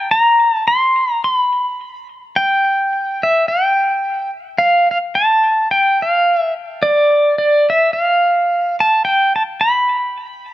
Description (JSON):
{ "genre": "hawaiian", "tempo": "108 BPM", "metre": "4/4", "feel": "swing 56% on 8ths", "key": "unclear", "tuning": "A4 = 440 Hz", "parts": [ { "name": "pedal steel guitar", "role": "solo", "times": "0.0-10.5 s", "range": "D5 to C6", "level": "-13 LUFS", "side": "equal", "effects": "ping-pong delay" } ], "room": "moderate small room reverb, RT60 0.5 s", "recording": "none", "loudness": "-13 LUFS", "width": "side -14 dB against mid", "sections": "0.0-2.3 A section; 2.3-10.5 B section", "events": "none", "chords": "none" }